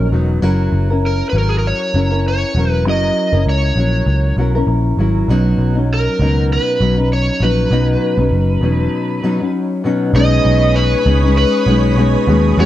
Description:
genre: indie pop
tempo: 99 BPM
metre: 4/4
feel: swing 55% on 16ths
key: B major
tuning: A4 = 439 Hz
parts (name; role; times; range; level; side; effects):
- overdriven slide guitar; melody; 0.0-12.7 s; G#4 to D#5; -19 LUFS; equal; lush chorus
- nylon-string guitar; accompaniment; 0.0-12.7 s; B2 to A#4; -17 LUFS; left 2 dB; lush chorus, vibrato effect
- vintage muted picked electric bass; bass; 0.0-12.7 s; E1 to E2; -15 LUFS; equal; none
- string machine, full ensemble; sustained chords; 10.3-12.7 s; C#5 to E6; -23 LUFS; right 2 dB; phaser, ensemble chorus
room: light reverb, digital ambience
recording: dark, warm production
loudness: -12 LUFS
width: side -13 dB against mid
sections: 0.0-10.2 A section; 10.2-12.7 B section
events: break 8.9-10.2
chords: 0.4 F#7; 5.3 Badd9; 10.2 B69

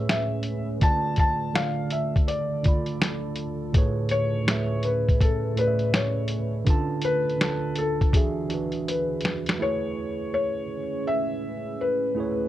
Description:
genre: lo-fi hip hop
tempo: 82 BPM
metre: 4/4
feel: swing 66% on 16ths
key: A major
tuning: A4 = 440 Hz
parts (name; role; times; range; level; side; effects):
- felt-muted upright piano; melody; 0.0-12.5 s; G#4 to A5; -28 LUFS; left 3 dB; low-pass filter, plate reverb
- mellow tine electric piano; accompaniment; 0.0-12.5 s; A2 to B5; -28 LUFS; right 3 dB; cassette tape, low-pass filter
- deep dark ambient pad; sustained chords; 0.0-12.5 s; D2 to B4; -35 LUFS; equal; chorus, built-in reverb, low-pass filter
- lo-fi sampler-style drum kit; drums; 0.1-9.6 s; hi-hat, kick drum, snare drum; -23 LUFS; equal; none
room: light reverb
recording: cassette tape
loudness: -23 LUFS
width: side -13 dB against mid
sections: 0.0-9.6 A section; 9.6-12.5 B section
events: drum fill 8.1-9.6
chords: 0.0 Amaj9; 0.8 Dm; 3.7 Amaj9; 6.7 Dm; 8.1 E9; 9.6 Amaj9

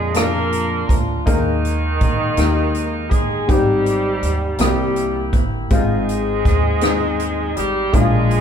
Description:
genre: slow gospel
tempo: 54 BPM (dotted quarters)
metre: 6/8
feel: straight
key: unclear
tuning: A4 = 437 Hz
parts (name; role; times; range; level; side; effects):
- breathy tenor saxophone; melody; 0.0-8.4 s; Eb3 to Bb3; -24 LUFS; right 2 dB; none
- warm horn section; melody; 0.0-8.4 s; Ab3 to Bb4; -24 LUFS; equal; none
- warm grand piano; accompaniment; 0.0-8.4 s; Ab2 to Bb4; -21 LUFS; left 3 dB; none
- upright bass; bass; 0.0-8.4 s; G1 to Bb2; -22 LUFS; equal; none
- swinging big-band drum kit; drums; 0.1-8.4 s; hi-hat, kick drum, rim click; -20 LUFS; right 1 dB; none
room: moderate stone room reverb, RT60 1.4 s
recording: band playing live in one room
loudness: -16 LUFS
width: side -8 dB against mid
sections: 0.0-8.4 A section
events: none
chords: 0.0 Bb7; 1.3 Ebsus4; 2.4 Eb; 3.5 Abmaj7; 4.6 C7; 5.7 Fm7/Ab

